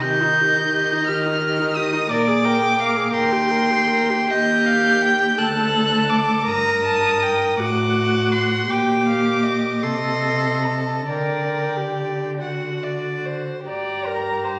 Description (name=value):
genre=classical, slow romantic movement for string quartet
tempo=44-59 BPM (dotted quarters)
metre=6/8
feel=rubato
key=G minor from 4.3 s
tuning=A4 = 439 Hz
part: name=dark violin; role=melody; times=0.0-14.6 s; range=G5 to G6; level=-24 LUFS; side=equal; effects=none
part: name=rich violin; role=second line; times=0.0-14.6 s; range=G4 to Bb5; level=-26 LUFS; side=equal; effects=none
part: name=warm viola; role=accompaniment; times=0.0-14.6 s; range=Eb4 to D5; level=-26 LUFS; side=equal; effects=none
part: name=dark cello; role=bass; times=0.0-14.6 s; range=D2 to Eb3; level=-26 LUFS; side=equal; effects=none
room=wet recital hall reverb, RT60 1.4 s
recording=none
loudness=-20 LUFS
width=mono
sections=0.0-13.7 A section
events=none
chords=0.0 Eb; 2.1 Bb7; 3.1 Eb; 4.3 Ebadd9; 5.4 D; 6.5 Gm; 7.6 D/A; 8.7 Gm/Bb; 9.8 Adim/C; 11.1 Gm/D; 12.4 D; 13.7 Gm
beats=| 0.03 1.08 | 2.11 3.14 | 4.29 5.38 | 6.46 7.58 | 8.69 9.83 | 11.10 12.42 | 13.67